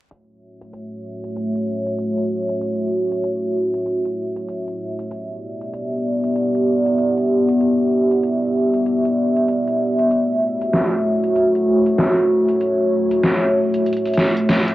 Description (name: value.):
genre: glitch hop.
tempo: 96 BPM.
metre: 4/4.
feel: swing 61% on 16ths.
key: unclear.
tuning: A4 = 438 Hz.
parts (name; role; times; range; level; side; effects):
dark analog pad; sustained chords; 0.1-14.7 s; A3 to E5; -17 LUFS; equal; chorus, phaser, cassette tape.
dubstep drum kit; drums; 0.1-14.7 s; hi-hat, snare drum; -20 LUFS; equal; overdrive, cassette tape.
room: moderate spring reverb, RT60 2.7 s.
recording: home recording on cassette, vinyl crackle, low-pass filter.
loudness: -17 LUFS.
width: side -16 dB against mid.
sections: 0.1-14.7 A section.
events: filter sweep on analog synth pad 0.1-14.7; filter sweep 0.1-14.7.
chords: 0.1 F#m7; 5.1 Em7; 10.1 F#m7.